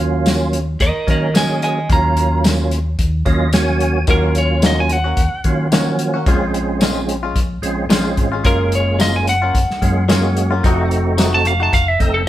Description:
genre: straight-eighth soul blues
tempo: 110 BPM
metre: 4/4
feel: swing 54% on 16ths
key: unclear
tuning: A4 = 440 Hz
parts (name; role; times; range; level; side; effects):
- lightly driven lead guitar; melody; 0.0-12.3 s; A4 to Bb5; -20 LUFS; right 1 dB; none
- percussive tonewheel organ; accompaniment; 0.0-12.2 s; F3 to Ab5; -20 LUFS; right 2 dB; slow rotary speaker, overdrive, chorus vibrato
- fingered electric bass; bass; 0.0-12.3 s; F1 to Eb3; -19 LUFS; equal; none
- warm soul drum kit; drums; 0.3-12.1 s; hi-hat, kick drum, snare drum, tambourine; -17 LUFS; left 1 dB; none
- direct-recorded clean electric guitar; stabs; 4.1-11.8 s; Bb2 to Gb4; -23 LUFS; left 4 dB; none
room: moderate studio reverb, RT60 0.9 s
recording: band playing live in one room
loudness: -14 LUFS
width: side -13 dB against mid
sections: 0.0-12.3 A section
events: lead electric guitar solo 0.0-12.3; tonewheel organ fill 3.0-4.1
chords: 0.0 Ebm7; 6.3 Bbm7; 8.5 Gbmaj7; 10.6 F7b9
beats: 0.26 0.81 1.35 | 1.90 2.45 2.99 3.54 | 4.08 4.63 5.18 5.72 | 6.27 6.82 7.36 7.91 | 8.45 9.00 9.54 10.09 | 10.64 11.18 11.73 12.28

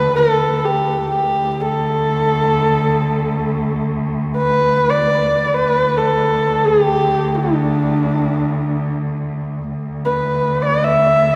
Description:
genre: mongolian traditional, Mongolian folk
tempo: free time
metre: none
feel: none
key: D zhi mode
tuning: A4 = 440 Hz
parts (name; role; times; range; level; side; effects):
- warm horsehead fiddle; melody; 0.0-11.4 s; D4 to E5; -18 LUFS; equal; none
- warm cello; drone; 0.0-11.4 s; D2; -22 LUFS; equal; none
room: wet church reverb, RT60 3.7 s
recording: recorded in a church or concert hall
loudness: -17 LUFS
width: mono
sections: 0.0-9.7 A section; 9.7-11.4 A section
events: none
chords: none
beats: free time

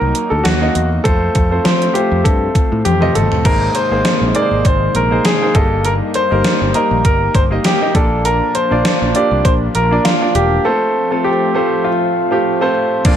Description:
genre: 1980s-style pop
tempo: 100 BPM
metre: 4/4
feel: swing 55% on 16ths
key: unclear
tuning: A4 = 440 Hz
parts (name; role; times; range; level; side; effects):
- clear concert grand piano; melody; 0.0-12.7 s; F4 to D5; -17 LUFS; equal; none
- clear concert grand piano; accompaniment; 0.0-13.2 s; G2 to Eb5; -19 LUFS; right 1 dB; none
- warm analog pad; sustained chords; 0.0-13.2 s; C3 to Eb4; -24 LUFS; left 1 dB; chorus
- picked electric bass; bass; 0.0-13.2 s; E1 to F3; -18 LUFS; equal; none
- gated 80s digital drum machine; drums; 0.1-13.2 s; crash cymbal, hi-hat, kick drum, snare drum, toms; -16 LUFS; equal; gated reverb, gated reverb snare, overdrive
room: light reverb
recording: none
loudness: -12 LUFS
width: side -9 dB against mid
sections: 0.0-3.5 A section; 3.5-13.1 B section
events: drum fill 2.9-3.5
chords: 0.0 Ebm; 1.1 F; 3.5 Abadd9; 5.6 Eb/G; 8.0 Bb; 10.7 F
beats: 0.45 | 1.05 1.65 2.25 2.85 | 3.45 4.05 4.65 5.25 | 5.85 6.45 7.05 7.65 | 8.25 8.85 9.45 10.05 | 10.65 11.25 11.85 12.45 | 13.05

